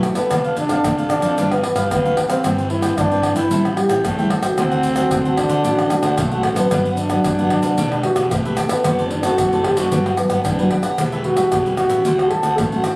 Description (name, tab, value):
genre	samba and choro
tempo	112 BPM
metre	4/4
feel	straight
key	G major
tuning	A4 = 442 Hz
part	breathy trombone	melody	0.0-12.9 s	A3 to A4	-19 LUFS	equal	none
part	cavaquinho	accompaniment	0.0-13.0 s	D4 to G5	-26 LUFS	right 1 dB	none
part	nylon-string guitar	accompaniment	0.0-13.0 s	G2 to A4	-23 LUFS	equal	none
part	egg shaker, pandeiro, tamborim and surdo	percussion	0.0-13.0 s	none	-22 LUFS	equal	none
part	fuzz fingered electric bass	bass	0.3-12.8 s	E1 to D3	-24 LUFS	equal	overdrive
room	moderate studio reverb, RT60 0.8 s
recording	recorded on a phone in the room, studio ambience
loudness	-15 LUFS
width	side -24 dB against mid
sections	0.0-13.0 A section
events	none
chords	0.3 F6; 1.4 G7; 2.4 Cmaj7/G; 3.5 Am7; 4.6 D7; 6.7 Gmaj7; 7.8 Em7; 8.8 D7/F#; 9.9 Gmaj7; 11.0 Em7; 12.0 D7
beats	| 0.31 0.84 1.38 1.91 | 2.44 2.98 3.51 4.05 | 4.58 5.11 5.65 6.18 | 6.71 7.25 7.78 8.31 | 8.85 9.38 9.92 10.45 | 10.98 11.52 12.05 12.58